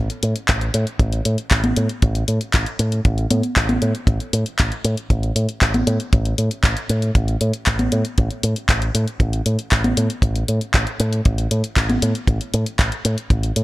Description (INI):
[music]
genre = italo disco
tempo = 117 BPM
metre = 4/4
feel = straight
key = unclear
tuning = A4 = 441 Hz
[part]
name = fingered electric bass with an envelope filter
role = bass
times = 0.0-13.6 s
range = A1 to A2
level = -20 LUFS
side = equal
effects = tube saturation
[part]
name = house drum kit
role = drums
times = 0.1-13.6 s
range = congas, handclaps, hi-hat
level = -22 LUFS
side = equal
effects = none
[part]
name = kick drum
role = drums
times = 0.5-13.4 s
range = none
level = -17 LUFS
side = equal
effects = none
[sound]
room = little or no reverb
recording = none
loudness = -17 LUFS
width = side -18 dB against mid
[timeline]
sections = 0.0-13.6 A section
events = none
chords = none